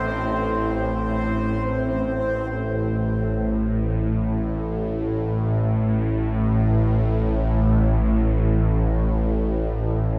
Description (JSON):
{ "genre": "dark ambient drone", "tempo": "free time", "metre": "none", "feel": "none", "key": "A minor", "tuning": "A4 = 439 Hz", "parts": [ { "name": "dark analog pad", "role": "sustained chords", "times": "0.0-1.9 s", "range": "none", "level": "barely audible", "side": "none", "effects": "none" }, { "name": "bowed-like drone", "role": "drone", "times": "0.0-10.2 s", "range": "A1 to A2", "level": "-23 LUFS", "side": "equal", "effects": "built-in reverb, phaser" }, { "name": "bubbling stepped-filter texture", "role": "texture", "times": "0.0-1.9 s", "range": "C4 to C5", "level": "-31 LUFS", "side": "equal", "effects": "chorus, built-in reverb" } ], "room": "wet cathedral reverb, RT60 5.7 s", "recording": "none", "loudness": "-22 LUFS", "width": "mono", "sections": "0.0-1.9 A section; 1.9-10.2 B section", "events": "none", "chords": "0.0 Am; 1.9 N.C.", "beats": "free time" }